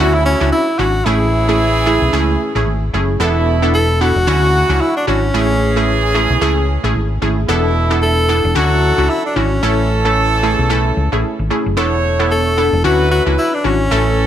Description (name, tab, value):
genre	afrobeats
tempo	112 BPM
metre	4/4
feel	swing 58% on 16ths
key	A major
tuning	A4 = 440 Hz
part	breathy tenor saxophone	melody	0.0-14.3 s	C#4 to A4	-18 LUFS	left 1 dB	ping-pong delay
part	warm horn section	second line	0.0-14.3 s	B2 to C#5	-20 LUFS	right 3 dB	none
part	glassy wavetable pluck	accompaniment	0.0-14.3 s	D3 to A4	-18 LUFS	equal	chorus
part	hollow-body short-scale fingered electric bass	bass	0.0-14.3 s	E1 to D2	-17 LUFS	equal	none
room	small room reverb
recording	none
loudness	-12 LUFS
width	side -10 dB against mid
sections	0.0-3.2 A section; 3.2-14.3 A section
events	none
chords	0.0 Dmaj9; 1.1 Amaj7; 3.2 E7sus4; 4.3 Dmaj9; 5.3 Amaj7; 7.5 E7sus4; 8.6 Dmaj9; 9.6 Amaj7; 11.8 E7sus4; 12.8 Dmaj9